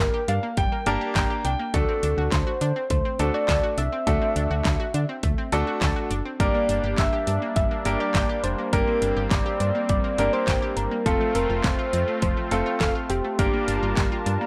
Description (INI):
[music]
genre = synth-pop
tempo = 103 BPM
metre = 4/4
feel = straight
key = G dorian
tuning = A4 = 440 Hz
[part]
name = soft struck synth lead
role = melody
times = 0.0-14.5 s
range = G4 to E5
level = -29 LUFS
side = equal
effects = chorus
[part]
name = clear concert grand piano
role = accompaniment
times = 0.0-14.1 s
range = A3 to Bb5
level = -30 LUFS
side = equal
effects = none
[part]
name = solid FM bass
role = bass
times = 0.0-14.4 s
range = F1 to D3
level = -29 LUFS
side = equal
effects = none
[part]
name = analog pluck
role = arpeggios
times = 0.1-14.5 s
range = F3 to G5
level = -35 LUFS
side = equal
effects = chorus, tape echo
[part]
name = pop drum kit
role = drums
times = 0.3-14.4 s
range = handclaps, hi-hat, kick drum, snare drum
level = -28 LUFS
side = equal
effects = none
[part]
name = brassy analog pad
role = sustained chords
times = 6.4-14.5 s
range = G3 to A5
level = -33 LUFS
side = equal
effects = chorus
[sound]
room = little or no reverb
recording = dry, gritty hardware recording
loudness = -24 LUFS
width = mono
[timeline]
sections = 0.0-14.5 A section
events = grand piano fill 0.0-1.7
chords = 0.0 Gm; 1.7 D7; 6.4 Gm; 11.1 F; 13.4 Gm7